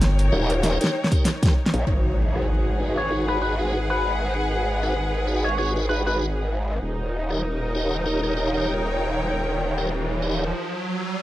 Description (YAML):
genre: glitch hop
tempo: 97 BPM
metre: 4/4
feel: swing 57% on 16ths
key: G# minor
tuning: A4 = 440 Hz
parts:
  - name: pop drum kit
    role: drums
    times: 0.0-9.9 s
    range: hi-hat, rim click, snare drum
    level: -25 LUFS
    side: equal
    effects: low-pass filter on snare, low-pass filter on hats
  - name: warm studio string section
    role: texture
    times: 0.0-10.5 s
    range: D#4 to G5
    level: -28 LUFS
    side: equal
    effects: sidechain pumping
  - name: tonewheel organ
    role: stabs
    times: 0.3-10.4 s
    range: D#4 to G5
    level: -28 LUFS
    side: equal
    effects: chorus vibrato, fast rotary speaker, sidechain pumping, low-pass filter, tape echo
  - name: growl bass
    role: bass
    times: 0.3-10.5 s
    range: D#1 to A#1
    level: -25 LUFS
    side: equal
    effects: chorus
  - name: electronic kick drum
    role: drums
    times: 1.1-1.5 s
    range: none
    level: -20 LUFS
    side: equal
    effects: none
  - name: impact and riser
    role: sound effects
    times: 1.9-11.2 s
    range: none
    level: -28 LUFS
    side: equal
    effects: none
  - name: sync lead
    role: melody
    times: 3.0-6.2 s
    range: B4 to C#5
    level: -28 LUFS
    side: left 1 dB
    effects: wide subtle chorus, tape echo
room: little or no reverb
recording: dry, gritty hardware recording, transformer saturation, vinyl crackle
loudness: -21 LUFS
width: side -15 dB against mid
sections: 0.0-1.9 A section; 1.9-11.2 B section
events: drum fill 0.6-1.9; impact 1.9-4.3; filter sweep on tonewheel organ 1.9-11.2; riser 8.4-11.2; break 10.5-11.2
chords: 0.0 D#7; 1.9 G#m7; 6.8 D#7